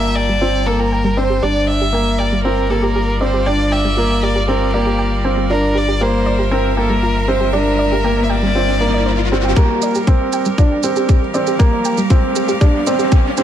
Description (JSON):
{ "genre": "piano and strings electronica", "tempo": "118 BPM", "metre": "4/4", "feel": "straight", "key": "G dorian", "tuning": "A4 = 441 Hz", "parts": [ { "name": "warm violin", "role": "melody", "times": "0.0-9.3 s", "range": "G4 to E5", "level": "-21 LUFS", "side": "left 1 dB", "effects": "tape echo" }, { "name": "bright string quartet", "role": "sustained chords", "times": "0.0-13.4 s", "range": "G3 to A5", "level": "-25 LUFS", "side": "left 1 dB", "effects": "sidechain pumping" }, { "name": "felt-muted upright piano", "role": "riff", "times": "0.0-13.4 s", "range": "Bb3 to D4", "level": "-18 LUFS", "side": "right 2 dB", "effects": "tape echo" }, { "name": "round analog bass", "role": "bass", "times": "0.0-9.5 s", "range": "G1", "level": "-20 LUFS", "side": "left 1 dB", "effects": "sidechain pumping" }, { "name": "soft round pluck", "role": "arpeggios", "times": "0.2-13.4 s", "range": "G3 to G5", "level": "-24 LUFS", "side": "right 2 dB", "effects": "chorus, sidechain pumping, tape echo" }, { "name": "riser", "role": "sound effects", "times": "7.1-13.4 s", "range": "none", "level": "-25 LUFS", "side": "left 2 dB", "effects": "none" }, { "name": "electronic kick drum", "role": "drums", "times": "9.6-13.2 s", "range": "none", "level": "-12 LUFS", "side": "left 1 dB", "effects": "small room ambience" }, { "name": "shaker", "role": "drums", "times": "9.6-13.4 s", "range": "none", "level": "-28 LUFS", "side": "right 10 dB", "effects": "high-pass filter on perc, small room ambience" } ], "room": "light reverb", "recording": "none", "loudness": "-13 LUFS", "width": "side -10 dB against mid", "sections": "0.0-9.6 A section; 9.6-13.4 B section", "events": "filter sweep on synth arpeggio sound 0.0-9.6; riser 7.1-9.6, 9.6-13.4; build-up 9.6-13.4", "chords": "0.0 Gm7; 1.4 Bb/G; 9.6 Gm7" }